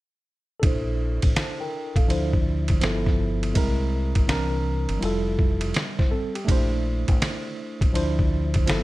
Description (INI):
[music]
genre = hip hop, jazz-hop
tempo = 82 BPM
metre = 4/4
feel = swing 65% on 16ths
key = unclear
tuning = A4 = 441 Hz
[part]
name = tine electric piano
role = accompaniment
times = 0.6-8.8 s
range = E3 to A5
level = -27 LUFS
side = right 1 dB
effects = medium stereo tremolo, low-pass filter
[part]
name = deep dub fingered electric bass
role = bass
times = 0.6-8.8 s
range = F1 to D2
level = -26 LUFS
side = equal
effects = none
[part]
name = trip hop sampler-style drum kit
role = drums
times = 0.6-8.8 s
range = hi-hat, kick drum, ride cymbal, snare drum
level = -24 LUFS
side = equal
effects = none
[sound]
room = little or no reverb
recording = none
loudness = -21 LUFS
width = side -18 dB against mid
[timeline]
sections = 0.6-8.8 A section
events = filter sweep on tine electric piano 0.6-8.8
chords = 0.6 Bbmaj9#11; 2.1 Dm9; 2.8 G13; 3.6 Caug7; 4.3 C9; 5.0 Fmaj9; 6.5 Bbmaj9#11; 7.9 Dm9